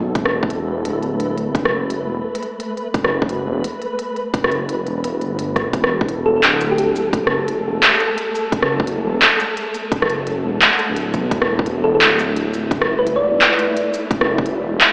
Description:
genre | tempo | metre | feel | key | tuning
half-time drum and bass | 172 BPM | 4/4 | swing 58% on 16ths, half-time | unclear | A4 = 439 Hz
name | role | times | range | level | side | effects
dark detuned saw bass | bass | 0.0-14.8 s | D1 to B1 | -22 LUFS | equal | none
flickering grainy texture | texture | 0.0-14.9 s | A3 to B4 | -25 LUFS | equal | built-in reverb
electronic kick drum | drums | 0.2-14.4 s | none | -19 LUFS | equal | overdrive
organic electronic drum kit | drums | 0.2-14.9 s | handclaps, hi-hat, rim click, shaker | -16 LUFS | equal | overdrive
thumb-piano-like synth pluck | melody | 6.3-6.8, 11.8-13.6 s | G4 to D5 | -20 LUFS | equal | lush chorus, tape echo
room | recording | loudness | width
wet huge ambient reverb, RT60 5.6 s | played on a big sound system in a bare room, large studio reverb, AM radio sound | -15 LUFS | side -37 dB against mid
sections
0.0-14.9 A section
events
none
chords
0.0 E5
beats
| 0.15 0.50 0.85 1.20 | 1.55 1.90 2.25 2.60 | 2.95 3.29 3.64 3.99 | 4.34 4.69 5.04 5.39 | 5.74 6.08 6.43 6.78 | 7.13 7.48 7.83 8.18 | 8.53 8.88 9.22 9.57 | 9.92 10.27 10.62 10.97 | 11.32 11.67 12.02 12.37 | 12.71 13.06 13.41 13.76 | 14.11 14.46 14.81

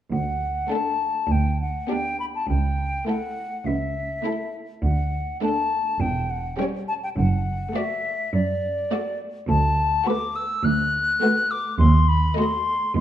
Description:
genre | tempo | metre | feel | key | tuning
quick classical-period movement for symphony orchestra | 103 BPM | 4/4 | rubato | D major | A4 = 440 Hz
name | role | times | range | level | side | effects
silver concert flute | second line | 0.1-13.0 s | D5 to F#6 | -25 LUFS | left 2 dB | none
rich chamber cello section | bass | 0.1-13.0 s | C#2 to F#2 | -25 LUFS | right 2 dB | none
rich studio double bass section | bass | 0.1-12.3 s | E1 to D#2 | -23 LUFS | right 2 dB | none
rich chamber violin section | melody | 0.7-12.8 s | G4 to D#5 | -34 LUFS | left 5 dB | none
rich studio violin section | second line | 0.7-12.8 s | C#4 to F#4 | -33 LUFS | left 3 dB | none
rich studio viola section | accompaniment | 0.7-12.8 s | G3 to B3 | -28 LUFS | right 2 dB | none
room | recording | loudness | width
moderate recital hall reverb, RT60 1.5 s | dark, warm production | -21 LUFS | side -11 dB against mid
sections
0.1-13.0 A section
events
none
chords
0.1 D; 1.3 G/D; 2.5 A7/C#; 4.8 D; 6.0 C#dim/E; 7.2 D/F#; 9.5 Bm7/D; 11.8 D#dim7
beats
| 0.12 0.72 1.31 1.90 | 2.49 3.08 3.66 4.25 | 4.83 5.42 6.02 6.59 | 7.18 7.75 8.33 8.91 | 9.49 10.06 10.64 11.22 | 11.80 12.38 12.96

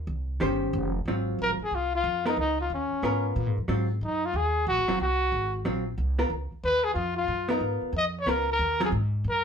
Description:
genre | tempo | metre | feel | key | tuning
jazz, small-group swing and bop | 183 BPM | 4/4 | swing 65% on 8ths | Ab mixolydian | A4 = 441 Hz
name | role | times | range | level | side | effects
upright bass | bass | 0.0-9.4 s | F1 to Bb2 | -30 LUFS | equal | none
hollow-body jazz guitar | accompaniment | 0.4-8.9 s | Eb3 to C5 | -28 LUFS | equal | none
breathy trumpet | melody | 1.4-9.4 s | Db4 to Eb5 | -26 LUFS | left 1 dB | none
room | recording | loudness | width
wet studio reverb, RT60 0.5 s | band playing live in one room | -25 LUFS | side -7 dB against mid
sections
0.0-1.1 A section; 1.1-9.4 B section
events
none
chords
0.0 Eb13; 1.1 Ab13; 2.4 Db13; 3.7 Ab13; 6.3 Db13; 8.9 Ab7sus2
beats
0.08 0.41 0.74 | 1.06 1.39 1.72 2.05 | 2.37 2.70 3.03 3.36 | 3.68 4.01 4.34 4.67 | 4.99 5.32 5.65 5.97 | 6.30 6.63 6.96 7.28 | 7.61 7.94 8.27 8.59 | 8.92 9.25

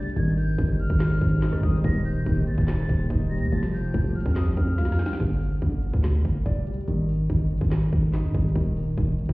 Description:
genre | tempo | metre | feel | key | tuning
hip hop, trap | 143 BPM | 4/4 | half-time | G minor | A4 = 441 Hz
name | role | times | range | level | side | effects
silver concert flute | melody | 0.0-5.2 s | Eb6 to Bb6 | -38 LUFS | left 2 dB | ping-pong delay
dark concert grand piano | accompaniment | 0.0-9.3 s | D3 to D5 | -29 LUFS | left 1 dB | none
dark analog pad | sustained chords | 0.0-5.2 s | Ab3 to D5 | -35 LUFS | equal | chorus
trap drum kit | drums | 0.0-9.3 s | handclaps, hi-hat, kick drum, rim click, snare drum | -26 LUFS | equal | overdrive, vintage 12-bit sampler grit
growling 808-style bass | bass | 0.2-9.3 s | Eb1 to Ab2 | -24 LUFS | equal | none
room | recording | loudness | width
digital ambience | heard muffled through a wall, stone room reverb, EQ | -22 LUFS | side -22 dB against mid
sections
0.0-5.2 A section; 5.2-9.3 B section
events
drum fill 4.8-5.2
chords
0.2 Abmaj7; 1.8 Eb6; 3.5 Fadd9; 5.2 G5; 6.9 Ab5; 8.6 Eb5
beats
| 0.16 0.58 1.00 1.42 | 1.84 2.26 2.68 3.10 | 3.52 3.94 4.36 4.78 | 5.20 5.62 6.04 6.46 | 6.88 7.30 7.72 8.14 | 8.56 8.97

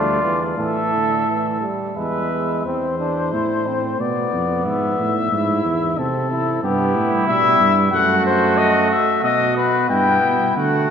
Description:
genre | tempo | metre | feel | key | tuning
classical, imitative canzona for brass ensemble | 91 BPM | 3/4 | straight | unclear | A4 = 440 Hz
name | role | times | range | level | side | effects
mellow cornet | melody | 0.0-10.9 s | G4 to G5 | -20 LUFS | left 6 dB | none
clear flugelhorn | second line | 0.0-2.6, 6.6-10.9 s | E4 to B4 | -22 LUFS | right 3 dB | none
clear trombone | accompaniment | 0.0-10.9 s | D3 to E4 | -23 LUFS | right 2 dB | none
mellow tuba | bass | 0.0-10.9 s | D2 to D3 | -23 LUFS | right 3 dB | none
room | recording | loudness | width
wet church reverb, RT60 3.1 s | none | -16 LUFS | side -7 dB against mid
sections
0.0-2.7 A section; 2.7-10.6 B section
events
none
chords
0.0 Dm; 0.6 Esus4/A; 2.0 E; 2.7 Am/E; 4.0 Bdim; 4.7 E/G#; 6.0 Am/C; 6.6 Em/G; 7.9 F#dim; 8.6 B/F#; 9.9 Em/G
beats
| 0.59 1.28 1.97 | 2.66 3.33 4.00 | 4.66 5.32 5.98 | 6.62 7.27 7.92 | 8.57 9.23 9.89 | 10.56

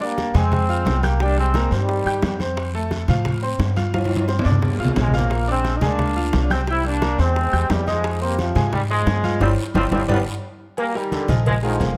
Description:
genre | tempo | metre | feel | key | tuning
latin, salsa | 176 BPM | 4/4 | straight | C minor | A4 = 441 Hz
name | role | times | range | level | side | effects
clear trombone section | melody | 0.0-2.4, 5.0-12.0 s | C3 to E4 | -26 LUFS | equal | none
bright upright piano | accompaniment | 0.0-11.9 s | F3 to G6 | -28 LUFS | equal | none
congas | percussion | 0.0-12.0 s | none | -28 LUFS | equal | none
bongos and cowbell | percussion | 0.2-12.0 s | none | -32 LUFS | equal | none
guiro | percussion | 0.2-12.0 s | none | -41 LUFS | equal | none
timbales and agogo bells | percussion | 0.2-12.0 s | none | -32 LUFS | equal | none
upright bass | bass | 0.3-12.0 s | F1 to A2 | -24 LUFS | equal | none
clear trombone section | second line | 11.1-11.8 s | D3 to Eb3 | -32 LUFS | equal | none
room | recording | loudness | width
light reverb | close, detailed microphones | -20 LUFS | mono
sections
0.0-10.8 A section; 10.8-12.0 B section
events
drum fill 3.9-5.3, 9.9-10.8; band accent 9.4-10.8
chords
0.0 Bb7; 1.2 Cm7; 2.6 F; 3.9 G7sus4; 5.3 Bb7; 6.7 C7; 8.0 Fm7; 9.4 G7sus4; 10.1 G; 10.8 Ebmaj9; 11.5 Bb7sus4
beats
0.18 0.52 0.86 | 1.21 1.55 1.89 2.23 | 2.57 2.91 3.26 3.60 | 3.94 4.28 4.62 4.96 | 5.31 5.65 5.99 6.33 | 6.67 7.02 7.36 7.70 | 8.04 8.38 8.73 9.07 | 9.41 9.75 10.09 10.44 | 10.78 11.12 11.46 11.80

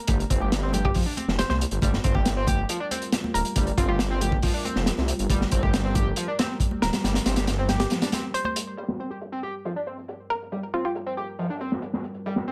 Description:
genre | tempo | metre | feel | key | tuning
breakbeat, breaks | 138 BPM | 4/4 | straight | G minor | A4 = 440 Hz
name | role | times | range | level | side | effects
hollow square pluck | melody | 0.0-4.0, 6.8-10.9 s | F4 to C5 | -33 LUFS | equal | chorus, old record sound, delay
overdriven synth lead | riff | 0.1-12.5 s | F3 to G4 | -34 LUFS | equal | distortion, tube saturation, subtle chorus, delay
detuned saw bass | bass | 0.1-7.9 s | D1 to C2 | -29 LUFS | equal | none
crunchy breakbeat drum kit | drums | 0.1-12.5 s | hi-hat, kick drum, snare drum | -28 LUFS | equal | low-pass filter on kick, low-pass filter on hats, low-pass filter on snare, low-pass filter on room
congas | percussion | 0.1-8.5 s | none | -37 LUFS | equal | none
deep dark ambient pad | sustained chords | 2.7-12.5 s | G3 to Bb4 | -38 LUFS | equal | chorus, built-in reverb, vintage 12-bit sampler grit, sidechain pumping
room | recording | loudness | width
light reverb | none | -25 LUFS | mono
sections
0.0-8.8 A section; 8.8-12.5 B section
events
break 7.9-8.8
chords
0.0 Gm7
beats
| 0.08 0.52 0.95 1.39 | 1.82 2.26 2.69 3.13 | 3.56 4.00 4.43 4.87 | 5.30 5.74 6.17 6.61 | 7.04 7.47 7.91 8.35 | 8.78 9.21 9.65 10.08 | 10.52 10.95 11.39 11.82 | 12.26

